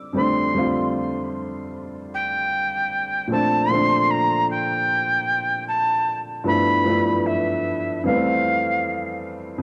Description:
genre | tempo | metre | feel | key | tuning
hip hop | 76 BPM | 4/4 | swing 64% on 16ths | F major | A4 = 440 Hz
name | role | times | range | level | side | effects
dark upright piano | accompaniment | 0.0-9.6 s | F2 to F4 | -26 LUFS | equal | none
jazz flute | melody | 0.2-9.2 s | E5 to C6 | -24 LUFS | equal | cassette tape, analog delay
room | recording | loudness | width
moderate spring reverb, RT60 2.5 s | home recording on cassette | -22 LUFS | mono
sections
0.0-9.6 A section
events
none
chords
0.0 F69; 3.3 Bbmaj7; 6.5 G13; 8.0 Fmaj9

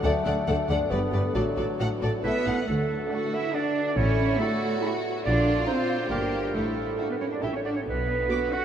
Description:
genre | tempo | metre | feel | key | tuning
cinematic, playful, whimsical film cue | 138 BPM | 3/4 | straight | D major | A4 = 439 Hz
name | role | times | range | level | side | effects
warm studio violin section | melody | 0.0-8.4 s | D5 to D6 | -38 LUFS | left 1 dB | none
rich studio violin section | second line | 0.0-8.6 s | D4 to D5 | -33 LUFS | equal | none
mellow bassoon | accompaniment | 0.0-2.2 s | F#3 to D4 | -33 LUFS | left 3 dB | none
warm studio viola section | accompaniment | 0.0-8.4 s | B3 to A4 | -36 LUFS | right 2 dB | none
concert harp | arpeggios | 0.0-8.6 s | G2 to D5 | -32 LUFS | left 2 dB | none
clear studio double bass section | bass | 0.0-8.2 s | G1 to D2 | -30 LUFS | equal | none
rich studio cello section | bass | 0.0-8.6 s | D2 to F#4 | -30 LUFS | right 1 dB | none
bright clarinet | second line | 2.2-8.6 s | A4 to F#5 | -29 LUFS | right 4 dB | none
room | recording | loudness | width
wet cathedral reverb, RT60 6.9 s | in a vast, echoing space | -24 LUFS | side -9 dB against mid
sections
0.0-2.7 A section; 2.7-8.6 B section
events
none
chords
0.0 D; 0.9 G; 1.3 D/A; 2.2 A; 2.7 D; 4.0 A9; 5.3 Bb; 6.1 Gm; 6.5 Asus4; 7.4 A; 7.9 Bm

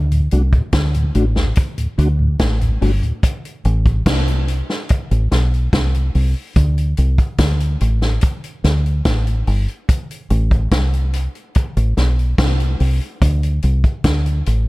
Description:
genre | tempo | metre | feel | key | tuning
dub reggae | 72 BPM | 4/4 | straight | unclear | A4 = 440 Hz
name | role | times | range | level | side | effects
deep dub fingered electric bass | bass | 0.0-14.7 s | G1 to D2 | -15 LUFS | equal | none
mellow tonewheel organ | accompaniment | 0.1-3.1 s | D2 to F#4 | -21 LUFS | left 1 dB | chorus vibrato, slow rotary speaker
vintage drum kit | drums | 0.1-14.7 s | hi-hat, kick drum, snare drum | -19 LUFS | equal | none
room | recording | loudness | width
small room ambience | none | -15 LUFS | side -21 dB against mid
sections
0.0-14.7 A section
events
none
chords
0.0 D; 3.2 Am; 6.6 D5; 9.9 Am; 13.2 D5

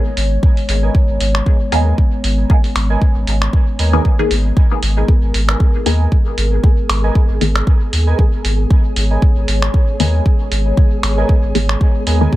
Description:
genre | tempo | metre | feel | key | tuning
dub techno | 116 BPM | 4/4 | swing 55% on 16ths | G# minor | A4 = 443 Hz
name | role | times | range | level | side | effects
dark analog pad | sustained chords | 0.0-12.4 s | G#3 to C#5 | -24 LUFS | left 2 dB | lush chorus, sidechain pumping
warm sub bass | bass | 0.2-12.3 s | G#1 to D#2 | -15 LUFS | equal | sidechain pumping
lo-fi sampler-style drum kit | drums | 0.2-12.2 s | finger snaps, hi-hat | -21 LUFS | right 1 dB | none
electronic kick drum | drums | 0.4-12.4 s | none | -12 LUFS | equal | none
warbly lo-fi synth keys | riff | 0.8-12.3 s | A#4 to G#5 | -28 LUFS | right 5 dB | chorus, sidechain pumping, dub echo
filtered dub chord stab | stabs | 1.7-12.4 s | D#3 to G#4 | -20 LUFS | left 2 dB | phaser, cassette tape, sidechain pumping, dub echo
flickering grainy texture | texture | 5.2-12.4 s | G#4 | -29 LUFS | right 2 dB | built-in reverb, sidechain pumping
room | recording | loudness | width
digital ambience | none | -12 LUFS | side -16 dB against mid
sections
0.0-4.6 A section; 4.6-12.4 A section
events
filter sweep on synth stab 4.6-12.4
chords
0.0 G#madd9

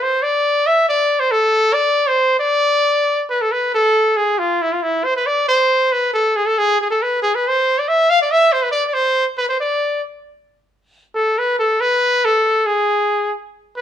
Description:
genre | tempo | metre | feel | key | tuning
klezmer | 137 BPM | 2/4 | straight | D dorian sharp4 | A4 = 438 Hz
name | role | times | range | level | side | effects
bright cornet | solo | 0.0-13.8 s | E4 to F5 | -14 LUFS | equal | none
room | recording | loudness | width
moderate studio reverb, RT60 0.9 s | band playing live in one room | -14 LUFS | side -10 dB against mid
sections
0.0-3.5 A section; 3.5-10.5 B section; 10.5-13.8 C section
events
cornet solo 10.5-13.8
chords
none

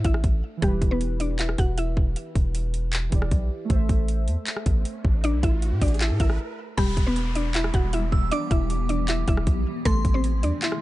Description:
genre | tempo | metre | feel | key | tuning
hip hop, trap | 156 BPM | 4/4 | half-time | E minor | A4 = 439 Hz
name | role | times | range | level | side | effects
mallet-like synth pluck | melody | 0.0-2.1, 5.2-10.8 s | G3 to F#5 | -28 LUFS | left 1 dB | chorus
warbly lo-fi synth keys | accompaniment | 0.0-6.8 s | E3 to E5 | -34 LUFS | right 2 dB | chorus
long sustained 808-style bass | bass | 0.0-10.5 s | E1 to A2 | -25 LUFS | equal | none
trap drum kit | drums | 0.0-10.8 s | crash cymbal, handclaps, hi-hat, kick drum, rim click | -24 LUFS | equal | none
riser and downlifter | sound effects | 4.4-9.9 s | none | -38 LUFS | right 1 dB | none
glassy synth bell | second line | 6.8-10.8 s | B5 to E6 | -34 LUFS | right 3 dB | chorus, phaser, digital delay
granular cloud pad | sustained chords | 7.4-10.8 s | C3 to G4 | -32 LUFS | left 2 dB | built-in reverb
room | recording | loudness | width
digital ambience | dark, warm production, nothing above 10.5 kHz | -21 LUFS | side -16 dB against mid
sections
0.0-6.8 A section; 6.8-10.8 B section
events
riser 4.4-6.8; break 6.4-6.8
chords
0.0 Am; 0.6 Em; 3.7 Am; 6.8 Em; 9.9 Am

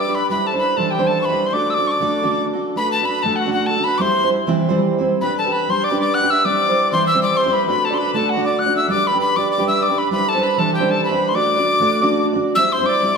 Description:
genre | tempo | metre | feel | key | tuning
celtic folk, Celtic reel | 196 BPM | 4/4 | swing 54% on 8ths | D mixolydian | A4 = 440 Hz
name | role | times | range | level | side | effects
breathy bright tin whistle | melody | 0.0-13.2 s | F#5 to F#6 | -19 LUFS | left 2 dB | none
accordion | second line | 0.0-13.2 s | F#4 to F#5 | -24 LUFS | equal | none
picked steel-string acoustic guitar | accompaniment | 0.0-13.2 s | C3 to D5 | -19 LUFS | right 2 dB | none
room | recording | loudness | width
wet recital hall reverb, RT60 1.8 s | recorded in a church or concert hall | -15 LUFS | side -5 dB against mid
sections
0.0-2.8 A section; 2.8-12.6 A section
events
none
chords
0.3 Cadd9; 1.5 D; 4.0 C; 5.2 G; 6.4 C; 7.7 D; 8.9 G; 10.1 Cadd9; 11.3 D; 12.6 C

